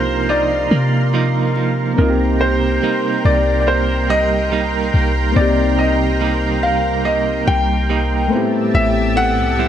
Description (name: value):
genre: R&B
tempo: 71 BPM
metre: 4/4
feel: straight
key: unclear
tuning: A4 = 440 Hz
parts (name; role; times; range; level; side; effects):
- warm concert grand piano; melody; 0.0-9.7 s; Bb4 to G5; -20 LUFS; left 1 dB; ping-pong delay
- soft electric-piano-like synth keys; accompaniment; 0.0-9.7 s; A3 to G4; -22 LUFS; left 3 dB; chorus
- lush unison pad; sustained chords; 0.0-9.7 s; G4 to C6; -24 LUFS; right 2 dB; chorus
- direct-recorded clean electric guitar; arpeggios; 0.0-9.7 s; A2 to E4; -22 LUFS; right 7 dB; tremolo
- clean 808-style bass; bass; 0.0-9.7 s; A1 to C3; -19 LUFS; left 1 dB; none
- synth chime; texture; 0.0-0.7, 9.2-9.7 s; A4 to C5; -32 LUFS; equal; none
room: light reverb, digital ambience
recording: none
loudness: -14 LUFS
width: side -10 dB against mid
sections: 0.0-2.0 A section; 2.0-9.7 B section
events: none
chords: 0.0 Cm11; 2.0 Cm7; 8.3 Am7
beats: 0.29 1.14 | 1.98 2.83 3.67 4.51 | 5.36 6.21 7.05 7.89 | 8.74 9.59